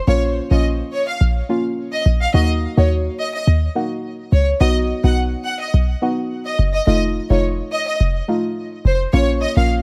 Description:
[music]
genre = dancehall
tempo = 106 BPM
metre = 4/4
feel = straight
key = Eb minor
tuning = A4 = 441 Hz
[part]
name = warm studio violin section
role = melody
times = 0.1-9.7 s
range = C5 to F#5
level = -25 LUFS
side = equal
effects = delay
[part]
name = soft round pluck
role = accompaniment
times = 0.1-9.8 s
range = A3 to Gb4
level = -24 LUFS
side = equal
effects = chorus
[part]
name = short 808-style bass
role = bass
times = 0.1-9.8 s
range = F1 to Eb2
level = -19 LUFS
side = equal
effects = none
[sound]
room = studio ambience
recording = none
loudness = -18 LUFS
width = mono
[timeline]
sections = 0.0-9.1 A section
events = none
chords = 0.1 Bbm; 2.3 Ebm; 4.6 B; 6.9 F7; 9.1 Bbm

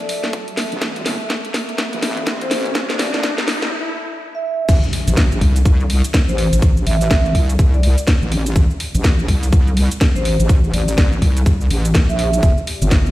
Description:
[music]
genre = bass house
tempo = 124 BPM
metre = 4/4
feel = swing 60% on 16ths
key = A minor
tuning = A4 = 440 Hz
[part]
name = vibraphone with medium mallets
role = melody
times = 0.0-12.4 s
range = C5 to E5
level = -25 LUFS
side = right 1 dB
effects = ping-pong delay
[part]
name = riser and impact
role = sound effects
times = 0.0-6.6 s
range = none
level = -26 LUFS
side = equal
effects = none
[part]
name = warbly tape-like pad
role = texture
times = 0.0-3.7, 12.6-13.1 s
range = G4 to A5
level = -31 LUFS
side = equal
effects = chorus, built-in reverb, sidechain pumping
[part]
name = garage drum kit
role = drums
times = 0.1-13.1 s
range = crash cymbal, hi-hat, shaker, snare drum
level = -22 LUFS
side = equal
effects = none
[part]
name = electronic kick drum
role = drums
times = 0.3-13.0 s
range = none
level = -14 LUFS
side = equal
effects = high-pass filter on kick, high-pass filter on room
[part]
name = wobble bass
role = bass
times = 0.7-13.1 s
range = G1 to C2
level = -17 LUFS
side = equal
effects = chorus, tube saturation, sidechain pumping, high-pass filter
[sound]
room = light reverb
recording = played on a big sound system in a bare room, stone room reverb, high-pass filter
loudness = -14 LUFS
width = side -16 dB against mid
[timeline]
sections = 0.0-4.7 A section; 4.7-13.1 B section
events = build-up 0.0-4.7; drum fill 0.0-3.7; riser 0.0-3.7; filter sweep 0.0-4.7; break 3.7-4.7; drop 4.7-13.1; impact 4.7-6.6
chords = 0.0 A5; 4.7 Am; 12.4 G5

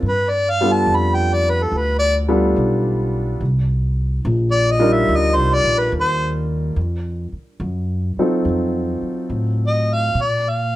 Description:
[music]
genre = jazz ballad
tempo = 71 BPM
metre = 4/4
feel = swing 67% on 8ths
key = unclear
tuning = A4 = 435 Hz
[part]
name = warm concert grand piano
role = accompaniment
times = 0.0-10.2 s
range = Gb3 to Bb4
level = -20 LUFS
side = equal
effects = none
[part]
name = upright bass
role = bass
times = 0.0-10.8 s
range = Bb1 to Bb2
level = -20 LUFS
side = equal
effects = none
[part]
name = mellow harmonica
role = melody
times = 0.1-10.8 s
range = A4 to B5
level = -18 LUFS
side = equal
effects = none
[sound]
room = moderate studio reverb, RT60 0.6 s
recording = dark, warm production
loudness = -16 LUFS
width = side -15 dB against mid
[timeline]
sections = 0.0-10.8 A section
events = harmonica solo 0.0-10.8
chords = 0.0 G7; 3.4 Cm11; 6.8 F7b9; 10.2 Bb

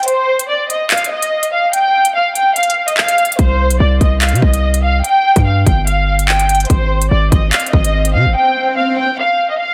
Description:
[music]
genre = hip hop, drill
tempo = 145 BPM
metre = 4/4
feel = half-time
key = unclear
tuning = A4 = 441 Hz
[part]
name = warm studio violin section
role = melody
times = 0.0-9.7 s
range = C5 to G5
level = -17 LUFS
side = equal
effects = low-pass filter, tape echo
[part]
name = drill drum kit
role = drums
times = 0.0-8.1 s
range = handclaps, hi-hat, kick drum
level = -18 LUFS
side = equal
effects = none
[part]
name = hard-hitting 808-style bass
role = bass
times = 3.4-8.3 s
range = G1 to C3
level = -16 LUFS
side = equal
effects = none
[part]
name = swell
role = sound effects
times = 7.6-9.2 s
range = none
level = -25 LUFS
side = equal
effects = none
[sound]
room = light reverb, digital ambience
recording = none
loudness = -14 LUFS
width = mono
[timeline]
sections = 0.0-9.7 A section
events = break 0.0-3.4; swell 7.6-9.7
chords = 0.0 N.C.; 3.4 Cm; 5.0 Fsus2/G; 6.7 Ab; 8.4 N.C.

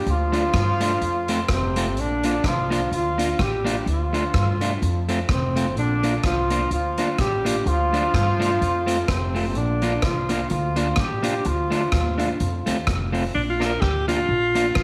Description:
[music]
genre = ska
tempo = 126 BPM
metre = 4/4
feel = swing 57% on 8ths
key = Bb major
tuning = A4 = 441 Hz
[part]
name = dark horn section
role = melody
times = 0.0-12.9 s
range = C3 to G4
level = -27 LUFS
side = equal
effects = none
[part]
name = upright bass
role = bass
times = 0.1-14.8 s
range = F1 to G2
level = -28 LUFS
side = equal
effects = none
[part]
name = street-band drum kit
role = drums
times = 0.1-14.8 s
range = hi-hat, kick drum, rim click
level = -30 LUFS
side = equal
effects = slapback echo
[part]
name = electric guitar at the edge of break-up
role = accompaniment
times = 0.3-14.7 s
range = A3 to F4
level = -29 LUFS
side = equal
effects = slapback echo
[part]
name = bright alto saxophone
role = melody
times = 13.3-14.8 s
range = D4 to Bb4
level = -24 LUFS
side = equal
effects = slapback echo
[sound]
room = moderate echo chamber reverb, RT60 1.6 s, studio reverb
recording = none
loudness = -22 LUFS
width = mono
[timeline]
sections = 0.0-13.3 A section; 13.3-14.8 B section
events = alto saxophone solo 13.3-14.8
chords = 0.1 Dm; 1.0 F; 2.0 Bb; 3.9 Dm; 4.8 F; 5.8 Bb; 7.7 Dm; 8.6 F; 9.6 Bb; 11.5 Dm; 12.4 F; 13.3 Bb

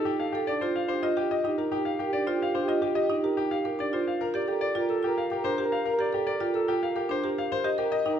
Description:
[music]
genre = classical, minimalist pattern music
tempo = 109 BPM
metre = 3/4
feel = straight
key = unclear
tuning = A4 = 440 Hz
[part]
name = clear concert grand piano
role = melody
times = 0.0-8.2 s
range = G4 to F5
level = -29 LUFS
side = left 5 dB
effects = none
[part]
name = warm French horn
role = second line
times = 0.0-8.2 s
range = G4 to Bb4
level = -33 LUFS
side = right 2 dB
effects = none
[part]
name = marimba with medium mallets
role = arpeggios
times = 0.0-8.2 s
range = D4 to Bb4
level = -28 LUFS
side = right 4 dB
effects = none
[sound]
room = wet recital hall reverb, RT60 1.7 s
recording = none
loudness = -25 LUFS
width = side -9 dB against mid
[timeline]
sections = 0.0-8.2 A section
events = none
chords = 0.0 F13; 0.9 Eb69; 4.2 Gm9; 7.5 Cm7

